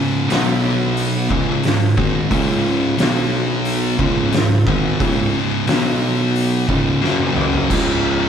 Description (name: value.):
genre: stoner and doom metal.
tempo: 89 BPM.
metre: 4/4.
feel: straight.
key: unclear.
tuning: A4 = 439 Hz.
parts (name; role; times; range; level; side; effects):
thick fuzz guitar; riff; 0.0-8.3 s; C#2 to B3; -20 LUFS; left 7 dB; distortion.
thick fuzz guitar; riff; 0.0-8.3 s; C#2 to B3; -20 LUFS; right 6 dB; distortion.
mellow tuba; bass; 0.3-8.3 s; F#1 to C#2; -23 LUFS; equal; overdrive.
oversized low-tuned drum kit; drums; 0.3-7.9 s; crash cymbal, hi-hat, kick drum, snare drum, toms; -21 LUFS; equal; none.
room: moderate stone room reverb, RT60 1.2 s.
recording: band playing live in one room.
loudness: -15 LUFS.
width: side -8 dB against mid.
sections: 0.0-7.7 A section.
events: drum fill 7.0-7.7.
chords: 0.3 B5; 1.3 C#5; 3.0 B5; 4.0 C#5; 5.7 B5; 6.7 C#5; 7.0 F#5; 7.7 C#5.